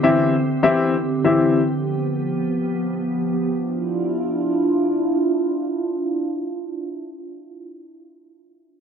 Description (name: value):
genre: pop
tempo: free time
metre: none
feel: none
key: D dorian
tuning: A4 = 440 Hz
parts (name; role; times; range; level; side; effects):
- warm baby grand piano; accompaniment; 0.0-1.6 s; E3 to E5; -17 LUFS; left 4 dB; low-pass filter
- glassy FM pad; sustained chords; 0.0-8.1 s; D3 to G4; -21 LUFS; right 2 dB; ensemble chorus, built-in reverb, low-pass filter
room: light reverb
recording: dry, close 1970s-style studio recording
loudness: -19 LUFS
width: side -7 dB against mid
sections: 0.0-3.5 A section; 3.5-7.4 B section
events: filter sweep 0.0-3.5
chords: 0.0 C; 1.6 G7; 3.5 Dmadd9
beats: free time